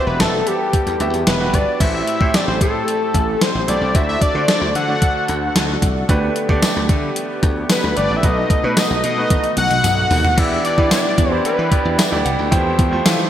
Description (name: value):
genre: 1980s-style pop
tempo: 112 BPM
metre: 4/4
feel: straight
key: E minor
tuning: A4 = 440 Hz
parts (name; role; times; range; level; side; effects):
- fat analog lead; melody; 0.0-12.2 s; G4 to F#5; -20 LUFS; left 2 dB; digital delay
- clear grand piano; accompaniment; 0.0-13.3 s; A2 to F#5; -23 LUFS; right 2 dB; none
- slap bass; bass; 0.1-13.3 s; E1 to E3; -22 LUFS; equal; none
- gated 80s digital drum machine; drums; 0.2-13.2 s; crash cymbal, hi-hat, kick drum, snare drum, toms; -18 LUFS; equal; gated reverb, gated reverb snare, overdrive
- warm analog pad; sustained chords; 1.8-13.3 s; D3 to A4; -27 LUFS; equal; chorus
- tambourine; percussion; 6.6-13.2 s; none; -31 LUFS; left 6 dB; none
- overdriven electric guitar; accompaniment; 10.4-13.3 s; E2 to F3; -30 LUFS; left 4 dB; none
- soft synth bell; second line; 12.0-13.3 s; E5 to G5; -25 LUFS; equal; chorus, phaser, digital delay
room: wet lush hall reverb, RT60 2.0 s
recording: bright 1980s-style digital production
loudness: -14 LUFS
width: side -10 dB against mid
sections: 0.0-1.8 A section; 1.8-10.4 B section; 10.4-13.3 C section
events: drum fill 9.3-10.4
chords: 0.0 Emadd9; 1.8 Am7; 3.9 D; 6.1 Gadd9/D; 8.2 B7; 10.4 Em7; 12.5 Fadd9/E